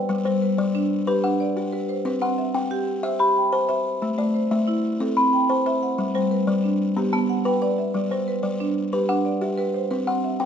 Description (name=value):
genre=southern african traditional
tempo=122 BPM (dotted quarters)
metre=12/8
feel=straight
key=G major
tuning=A4 = 440 Hz
part: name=buzzing kalimba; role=arpeggios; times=0.0-10.5 s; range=G3 to B5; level=-22 LUFS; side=left 3 dB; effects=none
part: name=marimba with medium mallets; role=arpeggios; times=0.0-10.5 s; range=G3 to A5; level=-25 LUFS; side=right 4 dB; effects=none
room=wet recital hall reverb, RT60 1.7 s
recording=close, detailed microphones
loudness=-20 LUFS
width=side -8 dB against mid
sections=0.1-10.5 A section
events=none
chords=0.1 G; 2.1 C; 4.0 Am; 5.0 C; 6.0 G; 7.0 Bm; 7.9 G; 9.9 C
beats=| 0.09 0.58 1.08 1.57 | 2.06 2.55 3.04 3.53 | 4.02 4.51 5.00 5.49 | 5.98 6.47 6.96 7.45 | 7.94 8.43 8.92 9.41 | 9.91 10.40